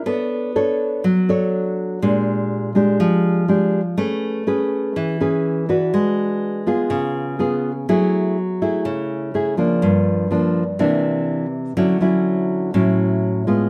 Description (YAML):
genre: bossa nova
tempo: 123 BPM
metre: 4/4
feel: straight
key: unclear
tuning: A4 = 440 Hz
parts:
  - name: nylon-string guitar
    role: solo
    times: 0.0-13.7 s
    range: G2 to C#5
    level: -20 LUFS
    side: equal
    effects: none
room: moderate echo chamber reverb, RT60 1.4 s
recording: none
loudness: -19 LUFS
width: mono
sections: 0.0-7.9 A section; 7.9-13.7 B section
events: none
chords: 0.1 Bm9; 2.0 Bb6; 4.0 Amaj9; 5.9 G#m7b5; 6.9 C#7; 7.9 F#m9; 9.8 Gm7; 10.8 C9; 11.8 Dmaj9